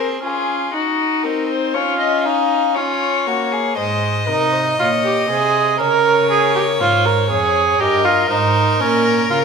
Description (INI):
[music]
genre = classical, baroque-style fugue for string quartet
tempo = 59 BPM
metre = 4/4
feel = straight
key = unclear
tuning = A4 = 441 Hz
[part]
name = dark violin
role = melody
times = 0.0-9.4 s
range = Gb4 to F5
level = -20 LUFS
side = left 8 dB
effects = none
[part]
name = rich violin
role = second line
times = 0.0-9.4 s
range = Db4 to Eb5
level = -21 LUFS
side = left 2 dB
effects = none
[part]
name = rich viola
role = accompaniment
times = 0.0-9.4 s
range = Ab3 to Bb4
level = -18 LUFS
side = right 4 dB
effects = none
[part]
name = rich cello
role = bass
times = 3.8-9.4 s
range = F2 to Db3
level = -22 LUFS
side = right 5 dB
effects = none
[sound]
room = moderate recital hall reverb, RT60 1.5 s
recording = minimal, uncompressed stereo recording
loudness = -14 LUFS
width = side -5 dB against mid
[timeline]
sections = 0.0-9.4 A section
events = none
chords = 0.0 Ab7/C; 1.7 Db; 3.8 Ab; 5.8 Bbm7/Db; 7.8 Eb7/G